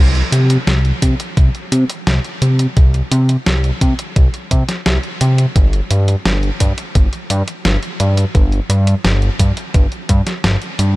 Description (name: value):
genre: synthwave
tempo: 86 BPM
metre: 4/4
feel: straight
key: unclear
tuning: A4 = 440 Hz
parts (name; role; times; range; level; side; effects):
- fat analog bass; bass; 0.0-11.0 s; G1 to C3; -14 LUFS; equal; sidechain pumping
- clean 12-bit digital drum machine; drums; 0.2-10.9 s; hi-hat, snare drum; -20 LUFS; equal; none
- electronic kick drum; drums; 1.0-10.2 s; none; -12 LUFS; equal; none
room: light reverb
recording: none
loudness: -12 LUFS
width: side -20 dB against mid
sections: 0.0-11.0 A section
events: band accent 0.0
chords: none